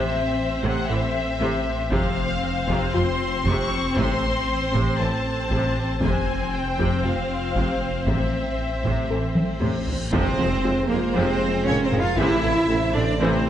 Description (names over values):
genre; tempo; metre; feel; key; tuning
cinematic, hybrid orchestral and electronic film score; 117 BPM; 4/4; straight; unclear; A4 = 445 Hz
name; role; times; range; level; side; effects
rich symphonic violin section; melody; 0.0-13.5 s; A4 to Db6; -29 LUFS; left 4 dB; none
rich symphonic violin section; second line; 0.0-13.5 s; C4 to F5; -29 LUFS; left 2 dB; none
rich symphonic viola section; accompaniment; 0.0-13.4 s; C3 to C4; -28 LUFS; equal; none
dark detuned saw bass; bass; 0.0-13.5 s; F1 to A1; -30 LUFS; equal; none
harp-like synth pluck; arpeggios; 0.6-13.4 s; F3 to A4; -32 LUFS; left 4 dB; chorus, phaser, tape echo
rich symphonic cello section; bass; 0.6-13.5 s; F2 to F4; -28 LUFS; right 3 dB; none
rich symphonic double bass section; bass; 0.6-13.3 s; F1 to F2; -30 LUFS; right 3 dB; none
taiko ensemble; drums; 1.9-12.7 s; none; -29 LUFS; equal; none
reverse cymbal and impact; sound effects; 9.7-12.2 s; none; -34 LUFS; equal; none
dark French horn section; sustained chords; 10.1-13.5 s; Bb3 to F4; -30 LUFS; left 1 dB; none
warm trombone section; sustained chords; 10.1-13.5 s; C3 to A3; -30 LUFS; right 2 dB; none
warm tuba; bass; 10.1-13.3 s; F1 to A1; -31 LUFS; right 3 dB; none
room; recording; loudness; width
moderate concert hall reverb, RT60 2.2 s; nothing above 10.5 kHz; -20 LUFS; side -10 dB against mid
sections
0.0-10.1 A section; 10.1-13.5 B section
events
drum fill 9.4-10.1; reverse cymbal 9.7-10.1; impact 10.1-12.2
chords
0.0 Am; 1.9 F5; 4.0 Am; 6.0 Fm; 8.1 Am; 10.1 Fm; 12.2 Am